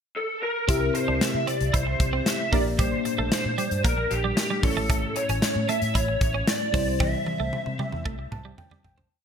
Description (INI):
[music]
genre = 1980s-style pop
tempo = 114 BPM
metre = 4/4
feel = straight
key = unclear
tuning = A4 = 441 Hz
[part]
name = lead guitar through a small cranked amp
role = melody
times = 0.2-8.5 s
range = G4 to E5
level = -28 LUFS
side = equal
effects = overdrive, ensemble chorus, digital delay
[part]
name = FM electric piano with soft pad layer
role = accompaniment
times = 0.7-9.1 s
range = A2 to A5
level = -30 LUFS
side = left 2 dB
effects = chorus, phaser
[part]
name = twelve-string electric guitar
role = riff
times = 0.7-9.1 s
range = G3 to E4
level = -33 LUFS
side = right 7 dB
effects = wide subtle chorus
[part]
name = vintage muted fingered electric bass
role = bass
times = 0.7-9.0 s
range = A1 to C3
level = -30 LUFS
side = equal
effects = none
[part]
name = modern studio drum kit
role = drums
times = 0.7-9.1 s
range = hi-hat, kick drum, snare drum, toms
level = -26 LUFS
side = equal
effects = gated reverb
[sound]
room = moderate plate reverb, RT60 1.7 s, small room ambience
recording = bright 1980s-style digital production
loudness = -22 LUFS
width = side -7 dB against mid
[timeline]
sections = 0.0-0.7 pickup bar; 0.7-9.1 pre-chorus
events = fade-out 7.0-9.1; drum fill 7.0-9.1; FM electric piano fill 8.1-9.1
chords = 0.0 N.C.; 0.7 C; 2.5 Gm/Bb; 4.6 A; 6.7 C